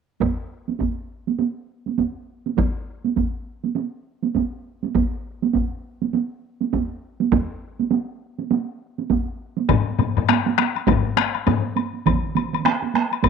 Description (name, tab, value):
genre	japanese traditional, taiko drum ensemble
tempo	101 BPM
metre	4/4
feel	swing 60% on 16ths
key	none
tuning	none
part	taiko ensemble	percussion	0.2-13.3 s	none	-22 LUFS	right 8 dB	none
part	taiko ensemble	percussion	0.2-13.3 s	none	-24 LUFS	equal	none
part	taiko ensemble	percussion	9.7-11.6 s	none	-20 LUFS	left 9 dB	none
part	woodblock	percussion	9.7-13.3 s	none	-27 LUFS	left 14 dB	none
part	taiko ensemble	percussion	12.1-13.3 s	none	-23 LUFS	right 6 dB	none
room	moderate spring reverb, RT60 1.3 s, small room ambience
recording	1960s-style stereo with parts hard left and right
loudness	-21 LUFS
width	side -6 dB against mid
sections	0.2-9.7 A section; 9.7-13.3 B section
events	none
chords	none